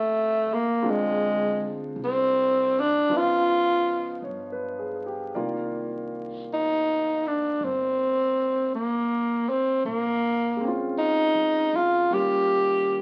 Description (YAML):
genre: jazz ballad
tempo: 53 BPM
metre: 4/4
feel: swing 67% on 8ths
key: unclear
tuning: A4 = 442 Hz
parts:
  - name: breathy tenor saxophone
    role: melody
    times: 0.0-13.0 s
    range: Ab3 to G4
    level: -24 LUFS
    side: equal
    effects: none
  - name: clear concert grand piano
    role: accompaniment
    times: 0.0-13.0 s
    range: Eb3 to D5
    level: -34 LUFS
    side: equal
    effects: none
  - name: upright bass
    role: bass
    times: 0.0-13.0 s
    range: F1 to G2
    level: -46 LUFS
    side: equal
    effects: none
room: moderate large studio reverb, RT60 0.9 s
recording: very old 78 rpm record, vinyl crackle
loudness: -25 LUFS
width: mono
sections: 0.0-13.0 A section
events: none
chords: 0.0 Bbmaj9; 0.8 Dm7b5; 3.1 Db9; 5.4 Cm11; 9.9 Bbm9; 12.1 Eb7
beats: | 0.83 1.97 3.10 4.22 | 5.35 6.48 7.60 8.73 | 9.86 10.98 12.11